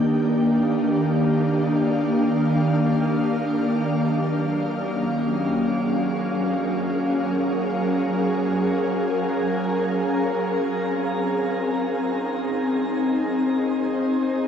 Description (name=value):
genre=ambient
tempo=free time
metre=none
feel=none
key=unclear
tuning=A4 = 440 Hz
part: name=ethereal airy pad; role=solo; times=0.0-14.5 s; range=Eb3 to F5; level=-20 LUFS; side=equal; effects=ensemble chorus, built-in reverb, diffuse ambient delay
room=wet shimmer reverb, RT60 9.3 s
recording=dark, warm production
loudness=-20 LUFS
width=side -8 dB against mid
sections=0.0-10.5 A section; 10.5-14.5 B section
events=none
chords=0.0 Ebmaj7; 3.9 Gbmaj7; 10.5 Ab